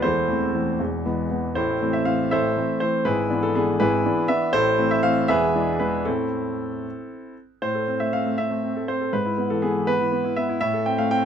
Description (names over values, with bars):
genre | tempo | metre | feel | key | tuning
classical-period piano sonatina | 80 BPM (dotted quarters) | 6/8 | straight | A minor | A4 = 440 Hz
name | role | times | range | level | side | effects
clear grand piano | solo | 0.0-11.2 s | E1 to G5 | -20 LUFS | equal | none
room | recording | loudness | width
little or no reverb | close, detailed microphones, faint mains hum | -20 LUFS | side -8 dB against mid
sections
0.0-7.6 A section; 7.6-11.2 A section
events
none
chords
0.0 Am/E; 0.8 E; 1.6 Am; 3.1 E7/G#; 4.5 Am; 5.3 E7; 6.1 Am; 9.1 E/G#; 10.6 Am